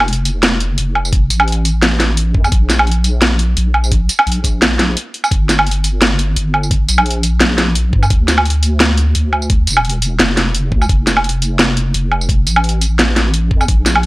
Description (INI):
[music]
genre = half-time drum and bass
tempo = 172 BPM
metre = 4/4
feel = swing 55% on 16ths, half-time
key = unclear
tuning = A4 = 442 Hz
[part]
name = deep soft wobble bass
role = bass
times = 0.0-14.1 s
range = E1 to G2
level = -15 LUFS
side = equal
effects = chorus
[part]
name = drum and bass drum kit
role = drums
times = 0.0-14.1 s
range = hi-hat, snare drum, tambourine, woodblock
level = -14 LUFS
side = equal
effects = none
[part]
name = electronic kick drum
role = drums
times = 1.1-13.8 s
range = none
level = -14 LUFS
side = equal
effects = none
[sound]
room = light reverb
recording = dry, gritty hardware recording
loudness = -11 LUFS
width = side -21 dB against mid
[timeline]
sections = 0.0-14.1 A section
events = break 5.0-5.3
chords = none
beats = 0.08 0.43 0.78 | 1.13 1.48 1.82 2.17 | 2.52 2.87 3.22 3.57 | 3.92 4.27 4.62 4.96 | 5.31 5.66 6.01 6.36 | 6.71 7.06 7.41 7.75 | 8.10 8.45 8.80 9.15 | 9.50 9.85 10.20 10.54 | 10.89 11.24 11.59 11.94 | 12.29 12.64 12.99 13.34 | 13.69 14.03